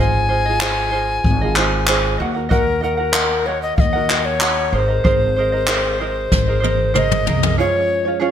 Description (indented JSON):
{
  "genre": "acoustic pop",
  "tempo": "94 BPM",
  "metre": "4/4",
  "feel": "straight",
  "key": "unclear",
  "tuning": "A4 = 441 Hz",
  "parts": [
    { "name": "tenor recorder", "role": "melody", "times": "0.0-8.2 s", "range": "Bb4 to Ab5", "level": "-20 LUFS", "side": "left 3 dB", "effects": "none" },
    { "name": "tenor ukulele", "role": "accompaniment", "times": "0.0-8.3 s", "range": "Db4 to Gb5", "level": "-22 LUFS", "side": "right 6 dB", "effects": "none" },
    { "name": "upright bass", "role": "bass", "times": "0.0-7.6 s", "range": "Ab1 to Eb2", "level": "-22 LUFS", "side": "equal", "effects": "none" },
    { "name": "jazz brush drum kit", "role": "drums", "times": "0.6-7.6 s", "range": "handclaps, kick drum, snare drum, toms", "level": "-19 LUFS", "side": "left 1 dB", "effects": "gated reverb" },
    { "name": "percussive tonewheel organ", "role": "sustained chords", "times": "7.6-8.3 s", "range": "F3 to Db4", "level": "-28 LUFS", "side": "left 1 dB", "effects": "chorus vibrato, slow rotary speaker" }
  ],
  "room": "light reverb, studio ambience",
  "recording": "bright 1980s-style digital production",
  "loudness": "-15 LUFS",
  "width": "side -9 dB against mid",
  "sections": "0.0-7.6 A section",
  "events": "drum fill 6.3-7.6",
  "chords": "0.0 Ab6; 2.2 Ebm; 4.7 Abadd9; 7.6 Db"
}